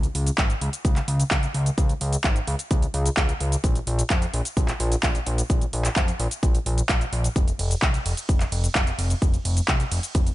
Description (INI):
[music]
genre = EDM, festival progressive house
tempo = 129 BPM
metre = 4/4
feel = straight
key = unclear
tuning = A4 = 440 Hz
[part]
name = fat analog bass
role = bass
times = 0.0-10.3 s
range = F1 to F2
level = -25 LUFS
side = equal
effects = sidechain pumping
[part]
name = big-room dance drum kit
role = drums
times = 0.0-10.3 s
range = handclaps, hi-hat, ride cymbal, shaker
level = -27 LUFS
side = equal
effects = overdrive, studio reverb
[part]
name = electronic kick drum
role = drums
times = 0.4-10.2 s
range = none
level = -22 LUFS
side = equal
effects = studio reverb
[sound]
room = little or no reverb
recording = nothing above 10.5 kHz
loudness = -21 LUFS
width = side -16 dB against mid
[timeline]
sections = 0.0-10.3 A section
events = none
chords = none